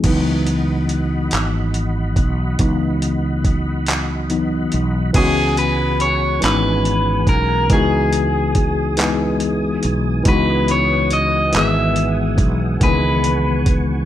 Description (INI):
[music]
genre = slow six-eight R&B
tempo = 47 BPM (dotted quarters)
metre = 6/8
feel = straight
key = C# minor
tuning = A4 = 441 Hz
[part]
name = tine electric piano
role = accompaniment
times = 0.0-14.1 s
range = D#3 to G#4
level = -20 LUFS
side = left 2 dB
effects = medium stereo tremolo
[part]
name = tonewheel organ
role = sustained chords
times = 0.0-14.1 s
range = B3 to D#6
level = -30 LUFS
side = equal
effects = overdrive, chorus vibrato, slow rotary speaker
[part]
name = mellow fretless electric bass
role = bass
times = 0.0-14.1 s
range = G#1 to C#2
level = -20 LUFS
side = right 1 dB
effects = none
[part]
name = dusty soul sampler-style drum kit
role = drums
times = 0.0-13.9 s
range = crash cymbal, handclaps, hi-hat, kick drum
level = -20 LUFS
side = right 1 dB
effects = overdrive
[part]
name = electric guitar at the edge of break-up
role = melody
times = 5.2-13.7 s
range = G#4 to E5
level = -20 LUFS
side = equal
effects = spring reverb, slapback echo
[sound]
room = light reverb, digital ambience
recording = none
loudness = -15 LUFS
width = side -12 dB against mid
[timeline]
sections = 0.0-5.1 A section; 5.1-14.1 B section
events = tine electric piano solo 0.0-5.1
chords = 0.0 C#m11; 7.7 Emaj7/C#; 10.3 C#m11